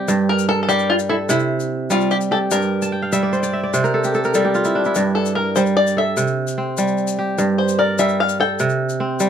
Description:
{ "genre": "west african traditional, West African string and xylophone music", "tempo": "99 BPM (dotted quarters)", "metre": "12/8", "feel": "straight", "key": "unclear", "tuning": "A4 = 440 Hz", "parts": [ { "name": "kora", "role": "arpeggios", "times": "0.0-9.3 s", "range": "G2 to A5", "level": "-18 LUFS", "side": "right 1 dB", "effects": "none" }, { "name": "tube shaker", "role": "percussion", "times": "0.1-9.3 s", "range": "none", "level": "-30 LUFS", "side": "left 11 dB", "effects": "none" }, { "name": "bluegrass banjo", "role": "melody", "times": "0.3-8.6 s", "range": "E4 to G5", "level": "-19 LUFS", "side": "left 2 dB", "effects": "none" } ], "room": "moderate studio reverb, RT60 0.6 s", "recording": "dark, warm production", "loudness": "-16 LUFS", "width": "side -8 dB against mid", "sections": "0.0-9.3 A section", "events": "kora fill 2.8-5.0", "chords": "0.1 Gm; 1.3 C; 2.5 N.C.; 3.7 C5; 5.0 Gm; 6.2 C5; 7.4 Gm; 8.6 C5", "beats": "| 0.08 0.69 1.30 1.91 | 2.52 3.13 3.73 4.34 | 4.95 5.56 6.17 6.78 | 7.38 7.99 8.60 9.21" }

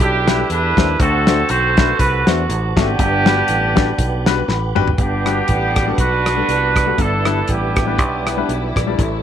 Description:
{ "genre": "uptempo gospel", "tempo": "120 BPM", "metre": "4/4", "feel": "swing 56% on 8ths", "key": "G major", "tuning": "A4 = 440 Hz", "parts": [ { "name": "clear horn section", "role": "melody", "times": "0.0-8.8 s", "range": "B3 to C5", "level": "-18 LUFS", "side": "right 3 dB", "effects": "none" }, { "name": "tonewheel organ", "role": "sustained chords", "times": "0.0-9.2 s", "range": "A4 to D6", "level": "-28 LUFS", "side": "right 12 dB", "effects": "chorus vibrato, stopped rotary speaker" }, { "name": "fingered electric bass", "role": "bass", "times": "0.0-9.2 s", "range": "G1 to E2", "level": "-21 LUFS", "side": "equal", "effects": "none" }, { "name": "warm soul drum kit", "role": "drums", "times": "0.0-9.1 s", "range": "hi-hat, kick drum, rim click, snare drum, toms", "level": "-18 LUFS", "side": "equal", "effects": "none" }, { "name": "clear grand piano", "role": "accompaniment", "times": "0.3-9.2 s", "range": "G2 to B5", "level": "-22 LUFS", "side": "left 11 dB", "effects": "none" }, { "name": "muted studio string section", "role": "sustained chords", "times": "5.0-9.2 s", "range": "C#3 to F#5", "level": "-29 LUFS", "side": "left 1 dB", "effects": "none" } ], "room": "light reverb, small room reverb", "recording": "1960s-style stereo with parts hard left and right", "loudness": "-14 LUFS", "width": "side -9 dB against mid", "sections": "0.0-5.0 A section; 5.0-9.2 B section", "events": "grand piano fill 4.2-5.0; drum fill 4.5-5.0", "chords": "0.0 A7sus4; 1.0 D7; 3.0 Gmaj7; 7.0 Em7/G", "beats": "0.00 0.50 | 0.99 1.49 1.99 2.49 | 2.99 3.49 3.99 4.49 | 4.98 5.48 5.98 6.48 | 6.99 7.49 7.99 8.49 | 8.99" }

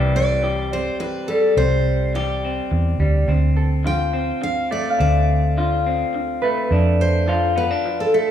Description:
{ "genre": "acoustic folk-pop ballad", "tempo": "105 BPM", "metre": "3/4", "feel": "straight", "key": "D dorian", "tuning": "A4 = 439 Hz", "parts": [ { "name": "electric guitar through a small old amp", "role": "accompaniment", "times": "0.0-8.3 s", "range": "D2 to G4", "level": "-22 LUFS", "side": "left 1 dB", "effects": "none" }, { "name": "vintage muted fingered electric bass", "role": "bass", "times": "0.0-7.7 s", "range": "C2 to F2", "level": "-19 LUFS", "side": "equal", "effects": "none" }, { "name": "picked steel-string acoustic guitar", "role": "melody", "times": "0.2-8.3 s", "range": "A4 to G5", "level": "-23 LUFS", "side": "equal", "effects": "none" }, { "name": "concert harp", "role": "arpeggios", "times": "3.6-8.3 s", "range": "A4 to F5", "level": "-25 LUFS", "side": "equal", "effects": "none" } ], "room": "wet recital hall reverb, RT60 1.3 s", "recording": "recorded in a church or concert hall", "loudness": "-17 LUFS", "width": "side -10 dB against mid", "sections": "0.0-8.3 A section", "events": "none", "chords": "0.0 Cadd9; 3.3 Dm7; 6.7 F6", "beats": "0.44 1.01 | 1.58 2.15 2.72 | 3.29 3.86 4.43 | 5.00 5.58 6.15 | 6.72 7.29 7.85" }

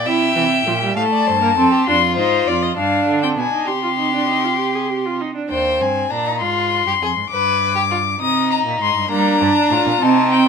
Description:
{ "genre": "classical, baroque-style fugue for string quartet", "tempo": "66 BPM (dotted quarters)", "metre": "6/8", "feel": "straight", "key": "C minor", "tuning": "A4 = 440 Hz", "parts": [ { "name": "warm violin", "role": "melody", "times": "0.0-10.5 s", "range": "C5 to Eb6", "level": "-19 LUFS", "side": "left 9 dB", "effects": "none" }, { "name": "rich violin", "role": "second line", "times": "0.0-10.5 s", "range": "Bb3 to F5", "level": "-21 LUFS", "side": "left 2 dB", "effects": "none" }, { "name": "rich cello", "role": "bass", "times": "0.0-10.5 s", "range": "Eb2 to G3", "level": "-23 LUFS", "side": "right 7 dB", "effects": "none" }, { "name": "warm viola", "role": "accompaniment", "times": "0.1-5.5, 9.1-10.5 s", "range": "E3 to Ab4", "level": "-20 LUFS", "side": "right 4 dB", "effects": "none" } ], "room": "moderate large studio reverb, RT60 0.9 s", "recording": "minimal, uncompressed stereo recording", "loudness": "-15 LUFS", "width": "side -6 dB against mid", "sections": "0.0-5.5 A section; 5.5-10.5 B section", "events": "none", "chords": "0.1 C7; 1.0 F (rootless); 1.9 Dm7b5/F (rootless); 2.8 G; 3.7 Cm; 5.5 Cm/Eb; 6.4 Fm/Ab; 7.3 G; 8.2 Cm; 9.1 Gm", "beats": "| 0.06 0.96 | 1.86 2.77 | 3.68 4.59 | 5.50 6.41 | 7.32 8.21 | 9.11 10.01" }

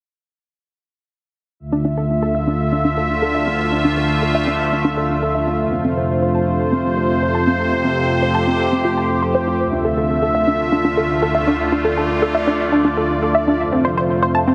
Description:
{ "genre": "techno", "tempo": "120 BPM", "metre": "4/4", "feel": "straight", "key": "D minor", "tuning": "A4 = 439 Hz", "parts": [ { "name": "sweeping resonant pad", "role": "sustained chords", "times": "1.6-14.5 s", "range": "D2 to E5", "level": "-20 LUFS", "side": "equal", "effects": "chorus" }, { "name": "deep dark ambient pad", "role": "texture", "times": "3.2-14.5 s", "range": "C4 to F5", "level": "-26 LUFS", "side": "equal", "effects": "chorus, built-in reverb" }, { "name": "tight sequenced synth", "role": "arpeggios", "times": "1.7-14.5 s", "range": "C4 to C6", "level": "-23 LUFS", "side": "equal", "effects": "chorus, dub echo" } ], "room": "wet lush hall reverb, RT60 2.8 s", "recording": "dense, heavily limited modern master", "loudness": "-18 LUFS", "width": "mono", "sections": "1.6-14.5 A section", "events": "filter sweep on synth arpeggio sound 1.6-14.5", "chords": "1.6 Dmadd9; 5.6 F; 9.6 Dmadd9; 13.6 F", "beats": "| 1.60 2.10 2.60 3.10 | 3.60 4.10 4.60 5.10 | 5.60 6.10 6.60 7.10 | 7.60 8.10 8.60 9.10 | 9.60 10.10 10.60 11.10 | 11.60 12.10 12.60 13.10 | 13.60 14.10" }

